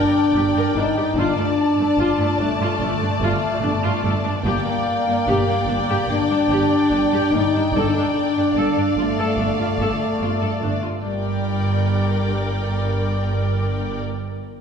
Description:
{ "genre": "cinematic", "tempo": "73 BPM", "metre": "4/4", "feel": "straight", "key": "G minor", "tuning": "A4 = 440 Hz", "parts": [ { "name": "rich studio violin section", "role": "melody", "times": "0.0-14.0 s", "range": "F5 to A5", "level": "-31 LUFS", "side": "left 3 dB", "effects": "none" }, { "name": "warm symphonic violin section", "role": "second line", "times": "0.0-14.0 s", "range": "D5", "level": "-28 LUFS", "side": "left 5 dB", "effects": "none" }, { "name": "clear symphonic viola section", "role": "accompaniment", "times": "0.0-14.0 s", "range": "A3 to Bb4", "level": "-27 LUFS", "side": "equal", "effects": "none" }, { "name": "warm French horn section", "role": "sustained chords", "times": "0.0-14.0 s", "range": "G3 to Eb4", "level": "-21 LUFS", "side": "left 1 dB", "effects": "none" }, { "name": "rich studio cello section", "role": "bass", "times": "0.3-14.0 s", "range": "G2", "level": "-26 LUFS", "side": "right 3 dB", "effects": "none" }, { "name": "rich studio double bass section", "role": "bass", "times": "0.3-14.0 s", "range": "G1", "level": "-27 LUFS", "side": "right 2 dB", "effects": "none" } ], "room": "wet concert hall reverb, RT60 2.0 s", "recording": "heard from further back in the room", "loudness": "-18 LUFS", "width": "side -7 dB against mid", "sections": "0.0-11.0 A section; 11.0-14.3 B section", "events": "none", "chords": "0.0 Gm; 1.2 Dm/G; 4.4 Gm; 7.7 Dm/G; 11.0 Gm", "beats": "0.34 | 1.16 1.98 2.80 3.62 | 4.45 5.27 6.09 6.91 | 7.73 8.56 9.38 10.20 | 11.03 11.85 12.67 13.50" }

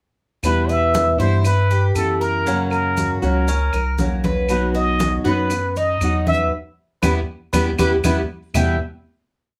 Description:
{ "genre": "latin, Cuban son and guajira", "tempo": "118 BPM", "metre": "4/4", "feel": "straight", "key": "E harmonic minor", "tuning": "A4 = 439 Hz", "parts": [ { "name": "trumpet with plunger mute", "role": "melody", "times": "0.4-8.8 s", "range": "A4 to G5", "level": "-24 LUFS", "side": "equal", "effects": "none" }, { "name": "nylon-string guitar", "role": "accompaniment", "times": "0.4-8.8 s", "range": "E2 to F#4", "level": "-26 LUFS", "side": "equal", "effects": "none" }, { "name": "round analog bass", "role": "bass", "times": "0.4-8.8 s", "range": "B1 to G2", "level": "-24 LUFS", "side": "equal", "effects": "none" }, { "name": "claves", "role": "percussion", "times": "0.4-8.7 s", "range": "none", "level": "-33 LUFS", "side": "equal", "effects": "none" }, { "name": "congas", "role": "percussion", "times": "0.4-8.7 s", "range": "none", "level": "-28 LUFS", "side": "equal", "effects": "none" }, { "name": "maracas", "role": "percussion", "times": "0.4-8.7 s", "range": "none", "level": "-36 LUFS", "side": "equal", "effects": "none" }, { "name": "Cuban tres", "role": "arpeggios", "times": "0.7-8.8 s", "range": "B3 to E5", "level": "-28 LUFS", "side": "equal", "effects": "none" } ], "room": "wet studio ambience, RT60 0.4 s", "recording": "heard from further back in the room", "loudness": "-19 LUFS", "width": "mono", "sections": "0.4-8.5 A section; 8.5-9.6 final chord", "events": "band accent 6.5-8.5", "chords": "0.4 Em; 2.5 F#; 4.5 B; 6.5 Em", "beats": "| 0.44 0.94 1.45 1.96 | 2.46 2.97 3.48 3.98 | 4.49 5.00 5.51 6.01 | 6.52 7.03 7.54 8.04 | 8.55" }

